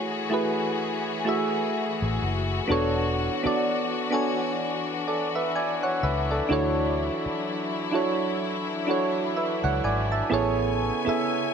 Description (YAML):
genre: contemporary R&B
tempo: 63 BPM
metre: 4/4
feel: swing 58% on 16ths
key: unclear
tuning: A4 = 440 Hz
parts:
  - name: soft electric-piano-like synth keys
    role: accompaniment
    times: 0.0-11.5 s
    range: A3 to A5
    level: -25 LUFS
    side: right 2 dB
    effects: chorus
  - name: rich studio string section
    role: sustained chords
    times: 0.0-11.5 s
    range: C#3 to G#5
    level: -30 LUFS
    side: left 4 dB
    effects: none
  - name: vintage muted fingered electric bass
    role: bass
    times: 2.0-11.1 s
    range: E1 to D2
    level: -28 LUFS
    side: left 1 dB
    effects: none
  - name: glassy synth bell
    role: texture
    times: 4.1-6.1 s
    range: G#5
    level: -37 LUFS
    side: left 2 dB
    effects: chorus, tape echo
room: light reverb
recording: none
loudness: -23 LUFS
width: side -7 dB against mid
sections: 0.0-11.5 A section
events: none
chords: 0.0 F#m9; 2.7 E13sus4; 6.5 Dmaj9; 10.3 Amaj9